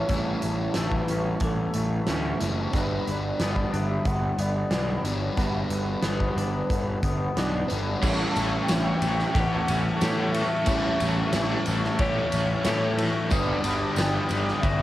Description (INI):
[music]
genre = rock, shoegaze and dream pop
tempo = 91 BPM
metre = 4/4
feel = straight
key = A mixolydian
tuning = A4 = 445 Hz
[part]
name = warm velvety synth lead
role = melody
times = 0.0-14.8 s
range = A4 to A5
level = -32 LUFS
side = equal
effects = chorus, analog delay
[part]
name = brassy analog pad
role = sustained chords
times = 0.0-14.8 s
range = D5 to D6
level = -35 LUFS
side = equal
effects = chorus
[part]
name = twangy electric guitar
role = arpeggios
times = 0.0-14.8 s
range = E3 to G4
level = -36 LUFS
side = left 4 dB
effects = lush chorus, analog delay
[part]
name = mellow electric guitar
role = riff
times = 0.0-14.8 s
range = A2 to G4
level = -33 LUFS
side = right 6 dB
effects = reverse reverb
[part]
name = overdriven semi-hollow guitar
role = riff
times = 0.0-14.8 s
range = G2 to E4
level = -31 LUFS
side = left 4 dB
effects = analog chorus
[part]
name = fuzz picked electric bass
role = bass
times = 0.1-14.8 s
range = F#1 to A2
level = -28 LUFS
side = equal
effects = overdrive
[part]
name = huge arena drum kit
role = drums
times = 0.1-14.8 s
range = crash cymbal, hi-hat, kick drum, ride cymbal, snare drum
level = -29 LUFS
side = equal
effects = none
[part]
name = overdriven electric guitar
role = riff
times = 8.0-14.8 s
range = G2 to A3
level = -32 LUFS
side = equal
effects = tremolo
[part]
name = tambourine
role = percussion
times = 8.0-14.4 s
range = none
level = -42 LUFS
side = right 6 dB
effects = none
[sound]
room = little or no reverb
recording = home recording on cassette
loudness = -23 LUFS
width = side -14 dB against mid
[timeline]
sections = 0.0-8.0 A section; 8.0-14.8 B section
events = none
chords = 0.0 A7; 2.7 Gmaj7; 8.0 A7; 13.3 Gmaj7